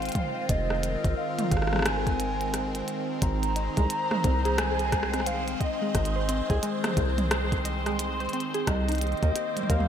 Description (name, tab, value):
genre	IDM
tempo	88 BPM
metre	4/4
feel	swing 62% on 16ths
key	unclear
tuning	A4 = 439 Hz
part	warbly nostalgic lead	melody	0.0-9.9 s	Eb5 to Bb5	-32 LUFS	equal	chorus, digital delay
part	phased analog pad	sustained chords	0.0-9.9 s	Eb3 to C5	-32 LUFS	equal	phaser, chorus
part	deep acid bass	bass	0.0-9.9 s	F1 to Eb2	-29 LUFS	equal	none
part	glitchy drum kit	drums	0.0-9.9 s	hi-hat, rim click, toms	-31 LUFS	equal	overdrive, gated reverb
part	electronic kick drum	drums	0.2-9.9 s	none	-27 LUFS	equal	overdrive
part	warbly dusty pluck	arpeggios	3.2-9.8 s	G3 to Eb5	-33 LUFS	right 2 dB	chorus, digital delay
room	moderate lush hall reverb, RT60 2.8 s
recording	bright 1980s-style digital production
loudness	-24 LUFS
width	side -9 dB against mid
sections	0.0-9.9 A section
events	none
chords	0.0 Fm7; 3.2 Ab; 8.7 Cm7